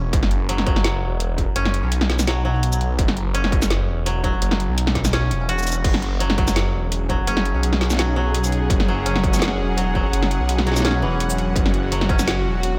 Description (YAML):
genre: half-time drum and bass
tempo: 168 BPM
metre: 4/4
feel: half-time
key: unclear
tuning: A4 = 440 Hz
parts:
  - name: koto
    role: arpeggios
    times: 0.0-12.8 s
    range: E3 to F#4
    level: -29 LUFS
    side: equal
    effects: diffuse ambient delay
  - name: phased detuned saw bass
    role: bass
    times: 0.0-12.8 s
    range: E1 to B1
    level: -24 LUFS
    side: equal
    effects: phaser
  - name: drum and bass drum kit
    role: drums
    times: 0.1-12.7 s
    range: crash cymbal, hi-hat, shaker, snare drum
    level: -26 LUFS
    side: equal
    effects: none
  - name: electronic kick drum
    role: drums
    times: 0.1-12.2 s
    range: none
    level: -25 LUFS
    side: equal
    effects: distortion
  - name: bowed-like drone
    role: sustained chords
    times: 6.7-12.8 s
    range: F#3 to F#5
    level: -28 LUFS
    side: equal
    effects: built-in reverb, sidechain pumping
room: light reverb, digital ambience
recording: none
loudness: -20 LUFS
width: mono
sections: 0.0-12.8 A section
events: none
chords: 0.0 F#5